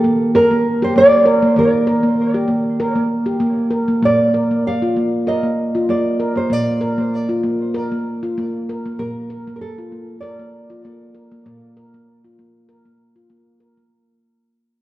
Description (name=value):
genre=world meditative, meditative tuned percussion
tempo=97 BPM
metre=4/4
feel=swing 54% on 16ths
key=unclear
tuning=A4 = 440 Hz
part: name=nylon-string guitar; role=melody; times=0.0-13.3 s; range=A4 to F5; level=-17 LUFS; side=right 1 dB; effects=diffuse ambient delay
part: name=handpan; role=arpeggios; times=0.0-13.9 s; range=Bb2 to Bb4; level=-17 LUFS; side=equal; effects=none
room=wet echo chamber reverb, RT60 2.2 s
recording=worn, warbling old tape, cassette tape, warbly pitch drift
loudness=-14 LUFS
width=side -16 dB against mid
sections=0.0-13.9 A section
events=fade-out 0.0-13.9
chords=0.0 Eb5; 4.0 Bb